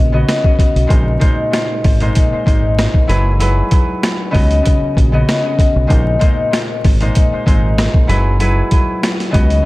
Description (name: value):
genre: hip hop, boom-bap hip-hop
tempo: 96 BPM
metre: 4/4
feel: swing 54% on 16ths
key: unclear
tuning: A4 = 444 Hz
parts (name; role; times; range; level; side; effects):
- concert harp; accompaniment; 0.0-9.7 s; Bb2 to Eb5; -17 LUFS; left 1 dB; high-pass filter, low-pass filter, tape echo
- deep dub fingered electric bass; bass; 0.0-9.6 s; Gb1 to Db2; -14 LUFS; equal; none
- boom bap sampler-style drum kit; drums; 0.3-9.6 s; hi-hat, kick drum, rim click, snare drum; -14 LUFS; equal; none
room: digital ambience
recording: echo-heavy mix, vinyl crackle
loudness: -11 LUFS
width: side -19 dB against mid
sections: 0.0-9.7 A section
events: none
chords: 0.0 Db9sus4; 0.9 Bb9sus4; 3.1 Gb9sus4; 4.3 Db9sus4; 5.9 Bb9sus4; 8.1 Gb9sus4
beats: 0.28 | 0.90 1.53 2.15 2.78 | 3.40 4.03 4.65 5.28 | 5.90 6.53 7.15 7.78 | 8.40 9.03 9.65